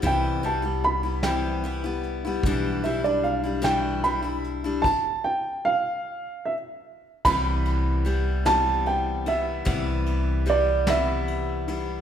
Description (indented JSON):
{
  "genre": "acoustic folk duo or small band",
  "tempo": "50 BPM (dotted quarters)",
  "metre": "6/8",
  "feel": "straight",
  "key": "C major",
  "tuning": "A4 = 440 Hz",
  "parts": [
    { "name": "picked steel-string acoustic guitar", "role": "accompaniment", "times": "0.0-12.0 s", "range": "B2 to E4", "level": "-28 LUFS", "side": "left 3 dB", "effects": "none" },
    { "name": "upright bass", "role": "bass", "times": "0.0-12.0 s", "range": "B1 to C2", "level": "-28 LUFS", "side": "equal", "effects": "none" },
    { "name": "soft brush drum kit", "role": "drums", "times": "0.0-11.9 s", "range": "crash cymbal, hi-hat, kick drum, ride cymbal, snare drum", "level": "-32 LUFS", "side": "equal", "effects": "none" },
    { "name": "warm upright piano", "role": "melody", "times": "0.1-11.8 s", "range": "D5 to B5", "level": "-25 LUFS", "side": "right 2 dB", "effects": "none" }
  ],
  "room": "wet recital hall reverb, RT60 1.7 s",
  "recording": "recorded in a church or concert hall",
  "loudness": "-22 LUFS",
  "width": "side -9 dB against mid",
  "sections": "0.0-7.3 A section; 7.3-12.0 B section",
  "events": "upright piano solo 0.0-7.3; stop 4.8-7.3",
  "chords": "0.0 Cmaj7; 2.4 G6/B; 4.8 N.C.; 7.3 Cmaj7"
}